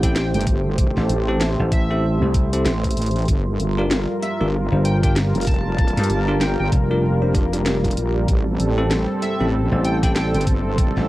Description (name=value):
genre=glitch hop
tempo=96 BPM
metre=4/4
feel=swing 60% on 16ths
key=A phrygian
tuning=A4 = 440 Hz
part: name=sync lead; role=melody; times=0.0-10.4 s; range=E5 to A5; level=-30 LUFS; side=equal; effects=wide subtle chorus, cassette tape, analog delay
part: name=dark analog pad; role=sustained chords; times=0.0-11.1 s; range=G3 to C5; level=-24 LUFS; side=right 1 dB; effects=chorus, sidechain pumping, cassette tape
part: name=bell-like tine electric piano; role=stabs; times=0.0-10.2 s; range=C4 to C5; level=-27 LUFS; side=equal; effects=sidechain pumping, cassette tape, analog delay
part: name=vintage slap bass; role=bass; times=0.0-11.1 s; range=F1 to G2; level=-20 LUFS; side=equal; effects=none
part: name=drum and bass drum kit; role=drums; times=0.0-11.1 s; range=hi-hat, snare drum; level=-26 LUFS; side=equal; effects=cassette tape
part: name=electronic kick drum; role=drums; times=0.0-10.9 s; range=none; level=-20 LUFS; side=equal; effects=cassette tape
part: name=deep dark ambient pad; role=texture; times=0.2-11.1 s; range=G4 to C6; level=-32 LUFS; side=left 1 dB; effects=chorus, built-in reverb, sidechain pumping, cassette tape
part: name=wobble bass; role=bass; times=0.3-10.9 s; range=F1 to Bb1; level=-22 LUFS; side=equal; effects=chorus
room=light reverb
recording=home recording on cassette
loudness=-17 LUFS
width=side -17 dB against mid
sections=0.0-11.1 A section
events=none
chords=0.0 Am7; 3.3 Gm7; 8.3 Am7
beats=0.16 | 0.78 1.41 2.03 2.66 | 3.28 3.91 4.53 5.16 | 5.78 6.41 7.03 7.66 | 8.28 8.91 9.53 10.16 | 10.78